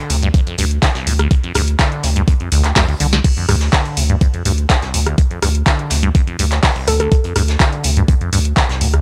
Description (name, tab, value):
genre	acid house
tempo	124 BPM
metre	4/4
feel	straight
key	D minor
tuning	A4 = 439 Hz
part	liquid acid bass	riff	0.0-9.0 s	C2 to D3	-23 LUFS	equal	phaser, tube saturation, vintage 12-bit sampler grit, sidechain pumping, analog delay
part	saturated sub bass	bass	0.1-9.0 s	C2 to D2	-18 LUFS	equal	sidechain pumping
part	booming analog drum machine	drums	0.1-9.0 s	crash cymbal, handclaps, hi-hat, rim click, snare drum	-21 LUFS	equal	none
part	soft brush drum kit	drums	0.1-8.9 s	hi-hat, snare drum	-30 LUFS	equal	none
part	electronic kick drum	drums	0.3-8.7 s	none	-16 LUFS	equal	overdrive
part	hollow square pluck	melody	6.9-7.1 s	A4	-24 LUFS	equal	chorus, analog delay
room	little or no reverb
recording	none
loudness	-15 LUFS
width	mono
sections	0.0-9.0 A section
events	drum fill 2.8-3.2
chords	0.0 D5